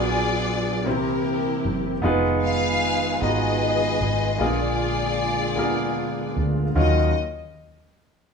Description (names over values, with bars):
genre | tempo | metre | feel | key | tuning
gospel | 51 BPM (dotted quarters) | 6/8 | straight | unclear | A4 = 440 Hz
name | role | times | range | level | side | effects
warm symphonic string section | melody | 0.0-7.1 s | E4 to F5 | -25 LUFS | left 2 dB | none
clear concert grand piano | accompaniment | 0.0-7.1 s | Eb2 to Bb5 | -25 LUFS | equal | none
tonewheel organ | sustained chords | 0.0-7.1 s | D3 to F5 | -29 LUFS | right 3 dB | chorus vibrato, slow rotary speaker
deep dub fingered electric bass | bass | 0.0-7.1 s | F1 to Eb2 | -27 LUFS | equal | none
room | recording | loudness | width
moderate large studio reverb, RT60 1.1 s | band playing live in one room, small room ambience | -20 LUFS | side -5 dB against mid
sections
0.0-6.8 A section; 6.8-8.3 B section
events
none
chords
0.0 Bb7b9b13; 0.9 C7; 2.0 Fm7b5; 4.4 Bb7; 6.8 Ebm9